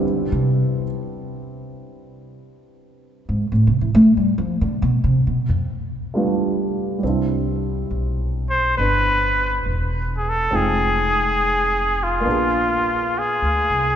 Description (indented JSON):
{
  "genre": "jazz ballad",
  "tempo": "69 BPM",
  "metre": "4/4",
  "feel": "swing 68% on 8ths",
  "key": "C major",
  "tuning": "A4 = 440 Hz",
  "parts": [
    { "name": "dark baby grand piano", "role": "accompaniment", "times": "0.0-14.0 s", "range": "G3 to G5", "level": "-24 LUFS", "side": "right 2 dB", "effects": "none" },
    { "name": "upright bass", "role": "bass", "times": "0.0-14.0 s", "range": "E1 to A3", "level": "-20 LUFS", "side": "equal", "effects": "none" },
    { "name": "trumpet with straight mute", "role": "melody", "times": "8.5-14.0 s", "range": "F4 to C5", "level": "-18 LUFS", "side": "equal", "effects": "none" }
  ],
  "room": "wet church reverb, RT60 3.4 s",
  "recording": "recorded in a church or concert hall, nothing above 7.9 kHz",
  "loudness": "-17 LUFS",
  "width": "side -9 dB against mid",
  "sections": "0.0-7.0 A section; 7.0-14.0 B section",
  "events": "upright bass solo 0.0-7.0",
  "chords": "0.0 Cmaj9; 3.5 Dm7; 5.2 G7; 7.0 Cmaj9; 10.5 Fm7; 12.3 Bb7b9"
}